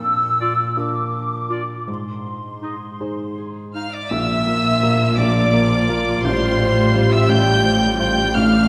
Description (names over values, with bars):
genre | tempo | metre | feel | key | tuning
cinematic | 56 BPM (dotted quarters) | 6/8 | rubato | unclear | A4 = 440 Hz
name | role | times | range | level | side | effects
mellow hollow flute section | second line | 0.0-8.7 s | C5 to E6 | -27 LUFS | equal | none
warm baby grand piano | accompaniment | 0.0-8.7 s | A1 to C5 | -27 LUFS | equal | none
concert harp | arpeggios | 0.0-8.7 s | Ab2 to C5 | -28 LUFS | equal | none
clear oboe | second line | 0.4-8.7 s | C5 to G5 | -28 LUFS | equal | none
warm clarinet | second line | 0.4-3.9 s | Eb4 to F4 | -35 LUFS | equal | none
warm symphonic violin section | melody | 3.7-8.7 s | C6 to G6 | -26 LUFS | equal | none
warm symphonic violin section | second line | 3.7-8.7 s | C5 to G5 | -31 LUFS | equal | none
warm symphonic viola section | accompaniment | 4.1-8.7 s | G3 to F4 | -27 LUFS | equal | none
warm French horn section | sustained chords | 4.1-8.7 s | F3 to F4 | -27 LUFS | equal | none
warm symphonic cello section | bass | 4.1-8.7 s | A2 to Bb2 | -26 LUFS | equal | none
warm symphonic double bass section | bass | 4.1-8.7 s | A1 to Bb1 | -26 LUFS | equal | none
room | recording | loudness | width
wet concert hall reverb, RT60 1.9 s | none | -18 LUFS | mono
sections
0.0-4.1 A section; 4.1-8.7 B section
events
none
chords
0.0 Bb; 1.9 Ab; 4.1 Bb; 6.2 Fadd9/A